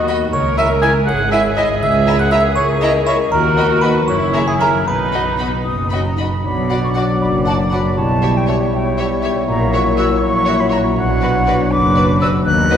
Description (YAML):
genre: cinematic, playful, whimsical film cue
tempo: 80 BPM (dotted quarters)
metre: 6/8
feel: straight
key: B major, B minor from 6.4 s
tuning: A4 = 440 Hz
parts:
  - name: music box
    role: melody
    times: 0.0-5.6 s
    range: G#5 to G#6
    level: -24 LUFS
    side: right 2 dB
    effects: none
  - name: warm cor anglais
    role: second line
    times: 0.0-12.8 s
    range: G#4 to G#5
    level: -20 LUFS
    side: right 2 dB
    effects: none
  - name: rich chamber viola section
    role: accompaniment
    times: 0.0-12.8 s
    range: D#4 to A#4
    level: -24 LUFS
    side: right 1 dB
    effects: none
  - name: mellow French horn section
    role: sustained chords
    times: 0.0-12.8 s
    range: F#3 to F#4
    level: -25 LUFS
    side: left 3 dB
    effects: none
  - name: concert harp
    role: arpeggios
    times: 0.0-12.8 s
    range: F#2 to G5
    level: -22 LUFS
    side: left 6 dB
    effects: none
  - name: rich chamber double bass section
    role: bass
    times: 0.0-12.8 s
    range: F#1 to D#2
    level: -22 LUFS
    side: right 1 dB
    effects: none
  - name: warm studio cello section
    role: bass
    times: 0.0-12.8 s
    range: C#2 to B2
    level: -22 LUFS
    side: right 2 dB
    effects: none
  - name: rich chamber violin section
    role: melody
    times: 0.1-12.8 s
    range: D5 to B5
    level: -31 LUFS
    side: left 4 dB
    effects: none
  - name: rich chamber violin section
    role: second line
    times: 0.1-12.8 s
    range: E4 to E5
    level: -26 LUFS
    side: left 2 dB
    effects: none
  - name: concert flute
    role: second line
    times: 5.6-12.8 s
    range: F#5 to F#6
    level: -20 LUFS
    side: equal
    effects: none
  - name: dark clarinet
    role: second line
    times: 6.4-12.8 s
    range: D4 to F#4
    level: -26 LUFS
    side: equal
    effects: none
  - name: warm bassoon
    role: accompaniment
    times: 6.4-12.8 s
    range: F#3 to G3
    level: -25 LUFS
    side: right 1 dB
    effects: none
room: wet concert hall reverb, RT60 2.0 s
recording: recorded in a church or concert hall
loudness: -13 LUFS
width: side -8 dB against mid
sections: 0.0-6.4 A section; 6.4-12.8 B section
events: none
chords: 0.3 C#m; 1.8 A#dim/C#; 3.3 B/D#; 4.1 F#9; 4.9 B; 6.4 Bm; 8.0 C#m7b5/B; 9.5 F#7/A#; 11.0 Bm